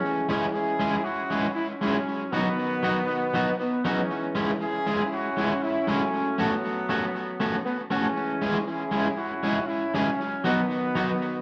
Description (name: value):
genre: ska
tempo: 118 BPM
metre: 4/4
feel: swing 53% on 8ths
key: C# minor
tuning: A4 = 440 Hz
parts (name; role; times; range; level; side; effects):
- warm horn section; melody; 0.0-11.4 s; D#3 to G#4; -30 LUFS; equal; tape echo
- electric guitar at the edge of break-up; accompaniment; 0.3-11.1 s; F#3 to A4; -29 LUFS; equal; tremolo, tape echo
room: wet studio reverb, RT60 0.6 s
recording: dark, warm production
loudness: -26 LUFS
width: mono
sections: 0.0-11.4 A section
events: none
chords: 0.0 C#m; 2.1 B; 4.1 C#m; 10.2 B